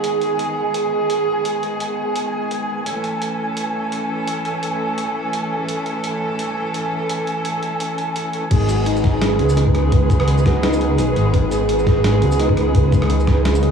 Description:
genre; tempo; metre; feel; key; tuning
half-time drum and bass; 170 BPM; 4/4; swing 55% on 16ths, half-time; G# phrygian; A4 = 443 Hz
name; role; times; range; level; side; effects
rich studio cello section; sustained chords; 0.0-13.7 s; D#3 to A4; -22 LUFS; right 2 dB; sidechain pumping, cassette tape
boom bap sampler-style drum kit; drums; 0.0-13.7 s; crash cymbal, hi-hat, rim click, shaker, snare drum; -27 LUFS; right 2 dB; none
flickering grainy texture; texture; 0.0-13.7 s; B4 to G#5; -26 LUFS; right 3 dB; built-in reverb, cassette tape
felt-muted upright piano; arpeggios; 8.5-13.7 s; D#3 to D#4; -22 LUFS; left 6 dB; vintage 12-bit sampler grit, cassette tape, analog delay
dark detuned saw bass; bass; 8.5-13.7 s; G#1 to C#2; -18 LUFS; equal; none
electronic kick drum; drums; 8.5-13.4 s; none; -18 LUFS; equal; none
room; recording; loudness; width
light reverb; home recording on cassette, studio reverb; -17 LUFS; side -6 dB against mid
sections
0.0-8.5 A section; 8.5-13.7 B section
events
drop 8.5-13.7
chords
0.0 G#m; 2.9 A; 8.5 G#m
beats
| 0.04 0.39 0.74 1.10 | 1.45 1.80 2.16 2.51 | 2.86 3.21 3.57 3.92 | 4.27 4.63 4.98 5.33 | 5.68 6.04 6.39 6.74 | 7.10 7.45 7.80 8.16 | 8.51 8.86 9.21 9.57 | 9.92 10.27 10.63 10.98 | 11.33 11.69 12.04 12.39 | 12.74 13.10 13.45

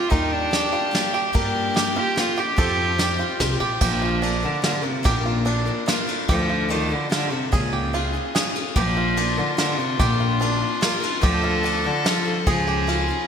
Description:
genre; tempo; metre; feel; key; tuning
indie folk with a building arrangement; 146 BPM; 3/4; straight; Bb major; A4 = 439 Hz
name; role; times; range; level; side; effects
dark cello; melody; 0.0-13.2 s; Bb2 to G4; -25 LUFS; right 1 dB; ping-pong delay
warm fiddle; second line; 0.0-3.6, 8.8-13.3 s; C4 to A4; -27 LUFS; left 2 dB; none
picked twelve-string acoustic guitar; accompaniment; 0.0-13.3 s; G2 to Bb4; -29 LUFS; left 6 dB; none
bluegrass banjo; arpeggios; 0.0-13.3 s; D4 to Bb4; -27 LUFS; right 4 dB; ping-pong delay
upright bass; bass; 0.1-13.1 s; Bb1 to G2; -27 LUFS; equal; none
vintage brush drum kit; drums; 0.1-13.0 s; crash cymbal, kick drum, ride cymbal, snare drum; -25 LUFS; equal; gated reverb
room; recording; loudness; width
wet lush hall reverb, RT60 1.9 s, small room ambience; bright 1980s-style digital production; -19 LUFS; side -7 dB against mid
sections
0.0-3.8 A section; 3.8-13.3 B section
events
none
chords
0.1 Ebmaj7; 1.3 Gm7; 2.6 Fsus2; 3.8 Bb; 6.3 Dm; 7.5 Db; 8.8 Bb; 11.2 Dm; 12.5 Db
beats
| 0.11 0.53 0.94 | 1.35 1.76 2.17 | 2.58 3.00 3.41 | 3.82 4.23 4.64 | 5.06 5.47 5.88 | 6.29 6.70 7.11 | 7.53 7.94 8.35 | 8.76 9.17 9.58 | 9.99 10.41 10.82 | 11.23 11.64 12.05 | 12.47 12.88

